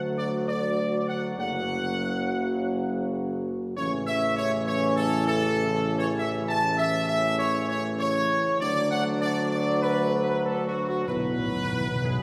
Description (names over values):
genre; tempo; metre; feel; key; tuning
classical, ceremonial fanfare; 99 BPM; 4/4; straight; unclear; A4 = 440 Hz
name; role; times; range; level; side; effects
clear trombone section; sustained chords; 0.0-12.2 s; C#3 to F#3; -36 LUFS; equal; none
mellow French horn section; sustained chords; 0.0-12.2 s; A3 to G#4; -33 LUFS; equal; none
clear tuba; bass; 0.0-12.2 s; F#1 to D2; -34 LUFS; equal; none
warm trumpet section; melody; 0.2-12.2 s; F#4 to A5; -29 LUFS; equal; none
timpani; percussion; 11.1-12.2 s; B2; -32 LUFS; equal; none
room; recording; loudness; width
wet concert hall reverb, RT60 2.2 s; heard from further back in the room; -26 LUFS; mono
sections
0.0-12.2 A section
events
timpani fill 11.1-12.2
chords
0.0 D; 1.4 F#; 3.8 A; 8.6 D; 11.1 Bsus4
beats
0.18 0.78 | 1.38 1.98 2.58 3.18 | 3.77 4.37 4.98 5.58 | 6.18 6.78 7.38 7.99 | 8.60 9.20 9.82 10.44 | 11.09 11.73